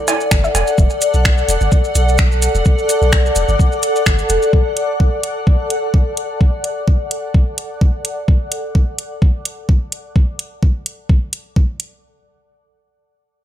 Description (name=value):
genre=minimal techno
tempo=128 BPM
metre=4/4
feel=swing 54% on 16ths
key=unclear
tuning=A4 = 440 Hz
part: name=granular cloud pad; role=texture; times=0.0-8.3 s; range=A4 to F#5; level=-19 LUFS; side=left 1 dB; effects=built-in reverb, sidechain pumping
part: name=resonant blip pluck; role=riff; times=0.1-0.5 s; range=E4 to E5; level=-26 LUFS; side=equal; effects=chorus, sidechain pumping, digital delay
part: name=garage drum kit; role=drums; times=0.1-11.9 s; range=finger snaps, hi-hat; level=-20 LUFS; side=right 1 dB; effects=small room reverb
part: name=cowbell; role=percussion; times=0.1-0.6 s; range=none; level=-21 LUFS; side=right 5 dB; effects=overdrive, small room reverb, digital delay
part: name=maracas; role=percussion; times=0.1-4.5 s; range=none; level=-25 LUFS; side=right 1 dB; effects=none
part: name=punchy sub bass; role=bass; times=0.3-4.4 s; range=E1 to B1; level=-16 LUFS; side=equal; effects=tube saturation, sidechain pumping
part: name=electronic kick drum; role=drums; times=0.3-11.7 s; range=none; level=-12 LUFS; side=equal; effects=small room reverb
room=light reverb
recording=none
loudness=-13 LUFS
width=side -11 dB against mid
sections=0.0-12.0 A section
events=none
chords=none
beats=0.31 | 0.78 1.25 1.72 2.19 | 2.66 3.12 3.59 4.06 | 4.53 5.00 5.47 5.94 | 6.41 6.88 7.34 7.81 | 8.28 8.75 9.22 9.69 | 10.16 10.62 11.09 11.56